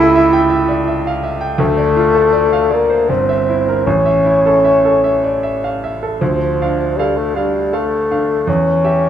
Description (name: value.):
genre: classical, romantic duo for bassoon and grand piano.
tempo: 79 BPM.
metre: 3/4.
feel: uneven beats, rubato.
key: D minor.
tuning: A4 = 440 Hz.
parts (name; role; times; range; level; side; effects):
dark bassoon; melody; 0.0-9.1 s; F3 to E4; -13 LUFS; left 1 dB; none.
bright grand piano; accompaniment; 0.0-9.1 s; G1 to G5; -17 LUFS; right 1 dB; none.
room: wet recital hall reverb, RT60 1.6 s.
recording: dark, warm production.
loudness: -12 LUFS.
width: side -10 dB against mid.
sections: 0.0-6.2 A section; 6.2-9.1 B section.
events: none.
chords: 0.0 A7/C#; 1.6 Dm; 3.1 Edim/G; 3.9 A; 6.2 Dm; 8.5 A7/E (rootless).